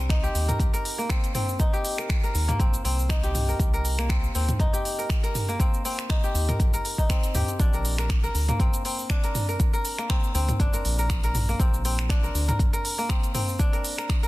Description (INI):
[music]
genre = afro house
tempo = 120 BPM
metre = 4/4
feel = swing 55% on 16ths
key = C minor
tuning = A4 = 439 Hz
[part]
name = kora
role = arpeggios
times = 0.0-14.3 s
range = Bb3 to Bb4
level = -30 LUFS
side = left 1 dB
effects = sidechain pumping, digital delay
[part]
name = round analog bass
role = bass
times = 0.0-12.7 s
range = Ab1 to Eb2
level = -26 LUFS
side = equal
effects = sidechain pumping
[part]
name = deep house drum kit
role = drums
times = 0.1-14.3 s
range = finger snaps, hi-hat, shaker, toms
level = -30 LUFS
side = right 1 dB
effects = soft clipping on snare
[part]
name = electronic kick drum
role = drums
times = 0.1-14.2 s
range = none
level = -24 LUFS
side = equal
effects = none
[sound]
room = digital ambience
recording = dense, heavily limited modern master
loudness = -22 LUFS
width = side -18 dB against mid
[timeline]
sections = 0.0-14.3 A section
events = none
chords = 0.0 Cm7; 7.6 Bbadd9